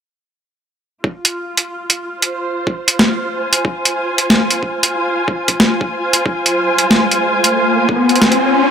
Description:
glitch hop; 92 BPM; 4/4; swing 63% on 16ths; F minor; A4 = 439 Hz
electronic kick drum; drums; 1.0-8.1 s; -20 LUFS; equal; overdrive, high-pass filter on kick, high-pass filter on room
muted studio string section; texture; 1.0-8.7 s; F4 to Ab5; -17 LUFS; equal; sidechain pumping
boom bap sampler-style drum kit; drums; 1.2-8.4 s; hi-hat, snare drum; -13 LUFS; equal; overdrive
riser; sound effects; 6.8-8.7 s; -16 LUFS; left 2 dB
moderate lush hall reverb, RT60 2.1 s; -13 LUFS; side -8 dB against mid
1.0-8.7 A section
riser 6.8-8.7
1.0 Fm

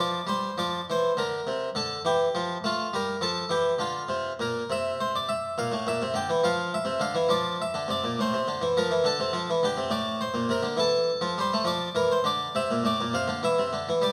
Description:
classical, baroque-style suite movement for harpsichord; 68 BPM (dotted quarters); 12/8; rubato; F major; A4 = 442 Hz
harpsichord; solo; 0.0-14.1 s; A2 to G5; -27 LUFS; equal
moderate scoring stage reverb, RT60 1.7 s; -27 LUFS; mono
0.0-14.1 A section
0.0 Dm11; 1.2 Bb; 4.7 C7; 6.5 F5; 8.2 F/A; 11.7 Dm; 13.4 Em

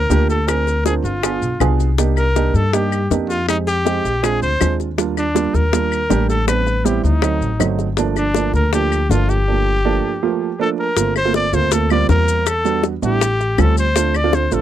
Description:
Afro-Cuban jazz; 160 BPM; 4/4; straight; G minor; A4 = 442 Hz
warm trumpet; melody; 0.0-14.6 s; D4 to D5; -20 LUFS; left 1 dB
upright bass; bass; 0.0-14.6 s; G1 to G2; -18 LUFS; left 1 dB
dark baby grand piano; accompaniment; 0.1-14.6 s; F3 to Bb4; -21 LUFS; right 10 dB
bongos; percussion; 0.1-14.6 s; -22 LUFS; left 10 dB
maracas; percussion; 0.1-14.6 s; -29 LUFS; left 17 dB
claves; percussion; 0.5-14.3 s; -27 LUFS; left 16 dB
little or no reverb; dry, close 1970s-style studio recording; -15 LUFS; side -11 dB against mid
0.0-11.0 A section; 11.0-14.6 B section
0.5 Dm7b5; 1.2 G7b9; 2.0 Cm7; 3.5 Fm9; 4.2 Bb9; 5.0 Ebmaj7; 6.5 Am11; 7.2 D7b9; 8.0 Gm7; 11.0 Gm11; 12.5 Em7; 13.2 A7alt; 14.0 Dm7

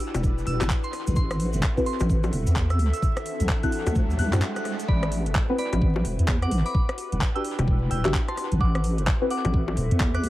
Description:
UK garage, two-step garage; 129 BPM; 4/4; swing 62% on 16ths; A dorian; A4 = 440 Hz
soft synth bell; melody; 0.0-10.2 s; D5 to F#6; -34 LUFS; right 1 dB; chorus, phaser, dub echo
soft string machine; sustained chords; 0.0-10.3 s; C4 to B4; -38 LUFS; left 1 dB; phaser, ensemble chorus, sidechain pumping
garage drum kit; drums; 0.0-10.3 s; bongos, handclaps, hi-hat, rim click; -31 LUFS; left 1 dB; analog delay
warbly tape-like pad; texture; 0.0-10.3 s; D4 to F#5; -36 LUFS; left 2 dB; chorus, built-in reverb, sidechain pumping
deep soft wobble bass; bass; 0.1-10.3 s; E1 to F#2; -23 LUFS; equal; chorus
cabasa; percussion; 0.1-4.9 s; -46 LUFS; right 2 dB
electronic kick drum; drums; 0.2-10.1 s; -24 LUFS; equal
riser; sound effects; 3.1-4.9 s; -37 LUFS; right 2 dB
deep mellow chord stab; stabs; 1.8-10.2 s; C4 to E5; -30 LUFS; left 1 dB; chorus, phaser, dub echo
light reverb, digital ambience; echo-heavy mix, vinyl crackle; -22 LUFS; side -16 dB against mid
0.0-4.9 A section; 4.9-10.3 B section
filter sweep on synth stab 0.0-4.9; riser 3.1-4.9; break 4.4-4.9; drop 4.9-10.3
0.0 Em9; 0.9 Am69; 2.8 D9; 4.9 Am69; 6.7 Em9; 8.4 Am69

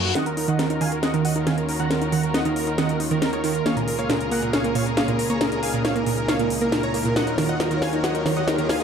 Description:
uplifting trance; 137 BPM; 4/4; straight; Eb minor; A4 = 440 Hz
dense compressed supersaw; melody; 0.0-8.8 s; Gb4 to Bb5; -27 LUFS; right 1 dB; low-pass filter, digital delay
rich studio string section; sustained chords; 0.0-8.8 s; Db2 to Db5; -29 LUFS; left 2 dB
reverse cymbal and riser; sound effects; 0.0-8.8 s; -33 LUFS; left 1 dB
analog pluck; arpeggios; 0.2-8.8 s; Bb2 to Eb4; -24 LUFS; right 4 dB; chorus, tape echo
techno drum kit; drums; 0.2-8.8 s; hi-hat, snare drum; -25 LUFS; left 1 dB
moderate digital room reverb, RT60 1.2 s, digital ambience; dark, warm production; -20 LUFS; side -7 dB against mid
0.2-8.8 A section
reverse cymbal 0.0; build-up 0.2-8.8; drum fill 0.2-8.8
0.2 Ebm7; 3.7 Bbm7/Db; 7.2 Ebm7

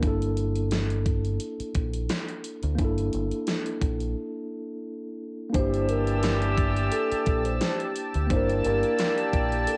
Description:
hip hop, boom-bap hip-hop; 87 BPM; 4/4; swing 54% on 16ths; G dorian; A4 = 441 Hz
tine electric piano; accompaniment; 0.0-9.8 s; Bb3 to Bb4; -33 LUFS; equal; cassette tape, high-pass filter, low-pass filter
deep dub fingered electric bass; bass; 0.0-9.7 s; G1 to D2; -30 LUFS; equal
dubstep drum kit; drums; 0.0-9.8 s; hi-hat, kick drum, snare drum; -31 LUFS; equal; overdrive, vintage 12-bit sampler grit, cassette tape
vibraphone with soft mallets; melody; 5.5-9.8 s; A4 to C5; -32 LUFS; equal; high-pass filter, low-pass filter, cassette tape
clear horn section; stabs; 5.5-9.8 s; E3 to A5; -34 LUFS; equal; high-pass filter, low-pass filter, cassette tape, tape echo
lush unison pad; sustained chords; 5.6-9.8 s; G4 to E6; -35 LUFS; equal; chorus, high-pass filter, low-pass filter, cassette tape
digital ambience; home recording on cassette; -26 LUFS; mono
0.0-5.5 A section; 5.5-9.8 B section
break 4.2-5.5
0.0 Gm69

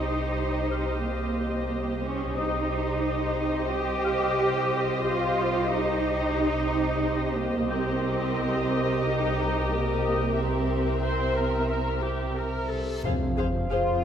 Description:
cinematic, suspense film score; 90 BPM; 4/4; straight; C minor; A4 = 438 Hz
muted studio violin section; melody; 0.0-13.8 s; Eb5 to F5; -35 LUFS; left 4 dB
muted studio violin section; second line; 0.0-13.8 s; Bb4 to C5; -34 LUFS; left 3 dB
muted studio viola section; accompaniment; 0.0-13.8 s; G4 to C5; -33 LUFS; equal
glass harmonica; sustained chords; 0.0-14.0 s; G4 to F5; -35 LUFS; left 1 dB
muted studio double bass section; bass; 0.0-14.0 s; C2 to F2; -30 LUFS; right 2 dB
muted symphonic cello section; bass; 0.0-14.0 s; Bb3 to G4; -29 LUFS; right 1 dB
large celesta; texture; 0.7-14.0 s; C5 to G6; -37 LUFS; left 4 dB
reverse cymbal and sub drop; sound effects; 12.7-14.0 s; -34 LUFS; left 1 dB
timpani; percussion; 13.0-14.0 s; F2; -33 LUFS; left 1 dB
wet scoring stage reverb, RT60 1.9 s; -24 LUFS; side -8 dB against mid
0.0-13.0 A section; 13.0-14.0 B section
reverse cymbal 12.7; impact 13.0-14.0
0.0 Eb6/C; 2.4 Cm; 7.7 Eb6/C; 10.4 C7; 13.0 Fm

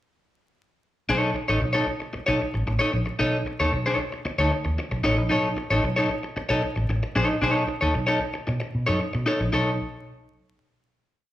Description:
funk; 114 BPM; 4/4; straight; B mixolydian; A4 = 438 Hz
electric guitar at the edge of break-up; accompaniment; 1.1-9.7 s; D#4 to C#5; -24 LUFS; left 1 dB
vintage muted fingered electric bass; bass; 1.1-9.8 s; A1 to B2; -27 LUFS; equal
wet large studio reverb, RT60 1.2 s; band playing live in one room, vinyl crackle; -22 LUFS; side -13 dB against mid
1.1-9.5 groove; 9.5-11.3 final chord
1.1 B9

